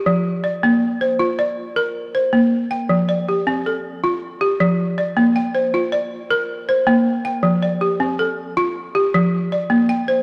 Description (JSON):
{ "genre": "west african traditional", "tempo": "106 BPM (dotted quarters)", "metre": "12/8", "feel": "straight", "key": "F major", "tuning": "A4 = 441 Hz", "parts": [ { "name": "balafon", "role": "solo", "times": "0.0-10.2 s", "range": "F3 to G5", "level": "-19 LUFS", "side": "equal", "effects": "none" } ], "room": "moderate plate reverb, RT60 3.1 s", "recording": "heard from further back in the room", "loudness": "-19 LUFS", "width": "mono", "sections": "0.0-10.2 A section", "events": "none", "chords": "0.0 N.C.; 0.6 Bb; 2.9 F; 5.2 Bb; 7.4 F; 9.7 Bb", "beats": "0.05 | 0.62 1.19 1.76 2.33 | 2.89 3.46 4.03 4.59 | 5.16 5.73 6.30 6.86 | 7.43 8.00 8.56 9.13 | 9.70" }